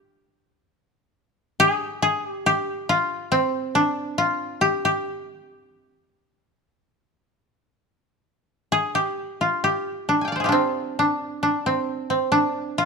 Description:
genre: japanese traditional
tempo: 67 BPM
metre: 4/4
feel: uneven beats, rubato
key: G in sen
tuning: A4 = 440 Hz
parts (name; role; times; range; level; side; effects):
- koto; solo; 0.0-12.9 s; C4 to Ab5; -20 LUFS; equal; none
room: light reverb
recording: close, detailed microphones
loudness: -20 LUFS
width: side -4 dB against mid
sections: 0.0-8.7 A section; 8.7-12.9 B section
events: none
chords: none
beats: 0.75 | 1.60 2.47 3.33 4.20 | 5.07 5.96 6.87 7.80 | 8.73 9.65 10.55 11.45 | 12.34

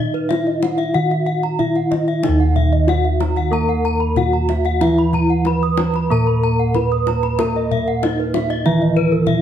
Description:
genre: Balinese gamelan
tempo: 93 BPM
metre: 4/4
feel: straight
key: Eb pelog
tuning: A4 = 440 Hz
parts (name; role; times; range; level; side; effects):
- gamelan-type bronze metallophone; melody; 0.0-9.4 s; Eb4 to Cb5-20c; -21 LUFS; equal; none
- gamelan-type bronze metallophone; arpeggios; 0.0-9.4 s; Cb5-20c to Cb6-20c; -24 LUFS; left 5 dB; none
- gamelan-type bossed gongs; bass; 0.0-9.4 s; Eb2 to Bb4-30c; -19 LUFS; equal; none
- gamelan-type bronze metallophone; arpeggios; 0.1-9.3 s; Bb4-30c to Eb6; -26 LUFS; right 6 dB; none
- kendang; percussion; 0.1-9.4 s; none; -26 LUFS; left 7 dB; none
- gamelan-type bronze metallophone; accompaniment; 2.2-9.4 s; Eb3 to Bb3-30c; -22 LUFS; right 4 dB; none
room: moderate recital hall reverb, RT60 1.5 s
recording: none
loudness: -15 LUFS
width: side -10 dB against mid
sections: 0.0-9.4 A section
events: none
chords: none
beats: 0.30 0.95 1.59 | 2.24 2.88 3.53 4.17 | 4.82 5.46 6.11 6.75 | 7.40 8.04 8.66 9.27

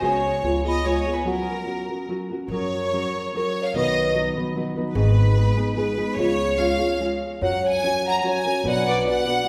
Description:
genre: mexican folk, mariachi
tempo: 147 BPM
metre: 3/4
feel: rubato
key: F# major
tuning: A4 = 439 Hz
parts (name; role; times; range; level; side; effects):
- bright studio violin section; melody; 0.0-9.5 s; A#4 to A#5; -28 LUFS; equal; none
- celesta; second line; 0.0-9.5 s; G#4 to B5; -28 LUFS; equal; none
- nylon-string guitar; accompaniment; 0.0-9.5 s; G#2 to B4; -28 LUFS; equal; none
- upright bass; bass; 0.0-9.2 s; G#1 to F#2; -28 LUFS; equal; none
room: wet scoring stage reverb, RT60 2.0 s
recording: recorded in a church or concert hall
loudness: -23 LUFS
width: mono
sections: 0.0-2.5 A section; 2.5-9.5 B section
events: break 1.3-2.5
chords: 0.0 C#7sus4; 0.4 C#7; 1.3 F#; 2.5 F#add9; 3.7 B; 5.0 G#m; 6.2 C#; 7.4 F#; 8.6 Bm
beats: | 0.03 0.43 0.84 | 1.26 1.67 2.09 | 2.51 2.92 3.34 | 3.75 4.15 4.56 | 4.96 5.36 5.77 | 6.18 6.58 7.00 | 7.42 7.83 8.24 | 8.65 9.05 9.46

